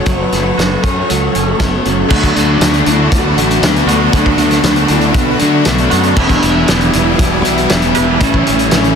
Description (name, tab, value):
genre	rock, shoegaze and dream pop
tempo	118 BPM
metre	4/4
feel	straight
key	D major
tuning	A4 = 442 Hz
part	breathy flute-like synth lead	melody	0.0-9.0 s	B3 to B4	-19 LUFS	left 1 dB	chorus, tape echo
part	evolving wavetable pad	sustained chords	0.0-9.0 s	A4 to D6	-24 LUFS	equal	ensemble chorus, built-in reverb
part	twelve-string electric guitar	arpeggios	0.0-9.0 s	E3 to A4	-24 LUFS	right 5 dB	none
part	overdriven semi-hollow guitar	riff	0.0-9.0 s	E2 to C#5	-17 LUFS	left 12 dB	lush chorus
part	twangy electric guitar	riff	0.0-9.0 s	A2 to B4	-18 LUFS	right 12 dB	reverse reverb
part	fuzz fingered electric bass	bass	0.1-8.9 s	E1 to D3	-17 LUFS	equal	overdrive
part	loose indie drum kit	drums	0.1-9.0 s	crash cymbal, hi-hat, kick drum, snare drum	-16 LUFS	equal	none
part	tight distorted guitar	riff	2.1-9.0 s	A2 to F#4	-18 LUFS	equal	distortion
room	small room ambience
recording	dense, heavily limited modern master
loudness	-10 LUFS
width	side -6 dB against mid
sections	0.0-2.1 A section; 2.1-9.0 B section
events	none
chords	0.0 F#m; 2.1 D6; 6.2 Em7; 8.2 A7